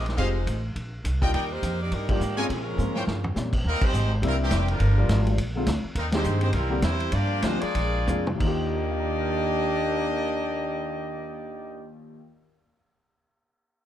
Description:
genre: jazz, big band swing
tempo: 177-208 BPM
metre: 4/4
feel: swing 59% on 8ths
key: Eb major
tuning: A4 = 440 Hz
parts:
  - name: clear saxophone section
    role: melody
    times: 0.0-3.3 s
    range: Eb3 to D5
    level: -33 LUFS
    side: right 1 dB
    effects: none
  - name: upright bass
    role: bass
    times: 0.0-12.2 s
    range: F1 to Bb2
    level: -26 LUFS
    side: equal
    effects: none
  - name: vintage drum kit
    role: drums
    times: 0.1-8.5 s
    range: crash cymbal, hi-hat, kick drum, ride cymbal, snare drum, toms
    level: -30 LUFS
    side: equal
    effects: none
  - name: warm grand piano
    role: accompaniment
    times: 0.2-12.9 s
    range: Eb2 to Bb6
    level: -31 LUFS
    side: left 2 dB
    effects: none
  - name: bright trumpet section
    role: stabs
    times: 0.2-3.0 s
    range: Ab4 to Ab5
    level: -32 LUFS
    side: left 1 dB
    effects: none
  - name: dark trombone section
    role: second line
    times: 2.5-11.9 s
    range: Bb2 to G4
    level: -31 LUFS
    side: left 1 dB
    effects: none
  - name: bright trumpet section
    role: melody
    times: 3.7-11.9 s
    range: G3 to Eb5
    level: -30 LUFS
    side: right 1 dB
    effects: none
room: light reverb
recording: dark, warm production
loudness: -23 LUFS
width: side -11 dB against mid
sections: 0.0-3.6 A section; 3.6-8.4 B section; 8.4-11.1 C section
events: band accent 2.1, 3.8, 6.1; drum fill 2.8-3.4, 8.1-8.4; slowing down 6.0-8.4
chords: 0.2 Fm7; 0.8 Bb69; 1.3 Ebmaj7; 2.5 Bbm7; 3.1 Gm7b5; 3.6 Abmaj7; 4.2 C7; 4.8 Gm7; 5.4 Bb7; 6.0 Abmaj7; 6.5 C7; 7.1 Gm7; 7.8 Bb7; 8.4 Ebmaj7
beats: | 0.18 0.47 0.76 1.04 | 1.33 1.62 1.91 2.20 | 2.49 2.78 3.07 3.36 | 3.65 3.94 4.22 4.51 | 4.80 5.09 5.38 5.67 | 5.96 6.25 6.54 6.83 | 7.13 7.44 7.75 8.08 | 8.41 8.75 9.09 9.43 | 9.77 10.10 10.44 10.78

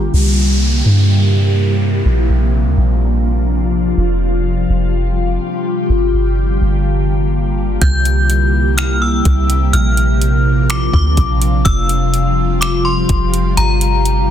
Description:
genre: hip hop, atmospheric cloud-rap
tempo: 125 BPM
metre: 4/4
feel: half-time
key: unclear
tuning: A4 = 441 Hz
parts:
  - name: ethereal airy pad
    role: sustained chords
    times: 0.0-14.3 s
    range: C3 to G4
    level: -17 LUFS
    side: left 1 dB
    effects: ensemble chorus, built-in reverb, phaser, sidechain pumping, low-pass filter
  - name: soft 808-style bass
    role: bass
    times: 0.0-14.3 s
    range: F1 to G2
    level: -14 LUFS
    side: equal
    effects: none
  - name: downlifter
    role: sound effects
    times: 0.1-4.0 s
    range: none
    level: -24 LUFS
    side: equal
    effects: none
  - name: metallic FM bell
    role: melody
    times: 7.8-14.3 s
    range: Bb5 to G6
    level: -19 LUFS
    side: left 2 dB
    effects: chorus, low-pass filter, tape echo
  - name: smooth R&B drum kit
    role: drums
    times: 7.8-14.2 s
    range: finger snaps, hi-hat, kick drum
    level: -18 LUFS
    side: equal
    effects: soft clipping on snare
room: digital ambience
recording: dense, heavily limited modern master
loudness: -12 LUFS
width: side -10 dB against mid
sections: 0.1-7.8 A section; 7.8-14.3 B section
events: filter sweep on ambient pad 0.1-7.8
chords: 0.1 C7; 2.1 Bbadd9; 4.0 Fsus2; 5.9 Gm7; 7.8 C7; 9.7 Bbadd9; 11.7 Fsus2; 13.6 Gm7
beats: | 0.14 0.61 1.09 1.57 | 2.06 2.54 3.02 3.50 | 3.98 4.46 4.93 5.42 | 5.89 6.38 6.86 7.33 | 7.82 8.29 8.78 9.26 | 9.73 10.21 10.70 11.18 | 11.65 12.13 12.62 13.10 | 13.57 14.05

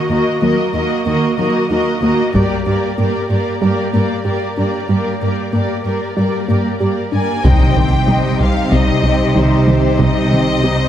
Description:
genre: cinematic, hybrid orchestral and electronic film score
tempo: 94 BPM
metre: 4/4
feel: straight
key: C minor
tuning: A4 = 439 Hz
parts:
  - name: dark symphonic violin section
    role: second line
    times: 0.0-10.9 s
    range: G4 to Eb5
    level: -22 LUFS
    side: left 2 dB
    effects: none
  - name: dark symphonic viola section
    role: accompaniment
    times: 0.0-10.9 s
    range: G3 to G4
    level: -20 LUFS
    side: right 1 dB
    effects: low-pass filter
  - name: warm symphonic cello section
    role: bass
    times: 0.1-10.9 s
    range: Eb2 to C3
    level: -19 LUFS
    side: right 1 dB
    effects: none
  - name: resonant blip pluck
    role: arpeggios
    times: 0.4-10.8 s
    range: C3 to G4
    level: -21 LUFS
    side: equal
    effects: chorus, low-pass filter, tape echo
  - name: taiko ensemble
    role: drums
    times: 2.3-3.6, 7.4-10.6 s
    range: none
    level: -19 LUFS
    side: left 1 dB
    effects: none
  - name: warm symphonic violin section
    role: melody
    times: 7.1-10.9 s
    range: C5 to Ab5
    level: -21 LUFS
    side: left 4 dB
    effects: low-pass filter
  - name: plucky analog bass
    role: riff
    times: 7.4-10.8 s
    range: C2 to C3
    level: -18 LUFS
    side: equal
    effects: low-pass filter
  - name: dark symphonic double bass section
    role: bass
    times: 7.4-10.9 s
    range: C2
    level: -20 LUFS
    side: right 2 dB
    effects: none
  - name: impact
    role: sound effects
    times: 7.4-10.0 s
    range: none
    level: -21 LUFS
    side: equal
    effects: none
  - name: warm French horn section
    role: sustained chords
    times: 7.5-10.9 s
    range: C4 to Eb4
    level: -22 LUFS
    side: left 1 dB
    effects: low-pass filter
room: wet recital hall reverb, RT60 1.5 s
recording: none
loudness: -13 LUFS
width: side -10 dB against mid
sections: 0.0-7.4 A section; 7.4-10.9 B section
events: build-up 0.0-7.4; impact 7.4-10.0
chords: 0.0 Ebm; 2.3 Gm; 7.4 Cm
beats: 0.43 1.07 1.70 | 2.34 2.98 3.62 4.26 | 4.90 5.53 6.17 6.81 | 7.45 8.09 8.73 9.36 | 10.00 10.64

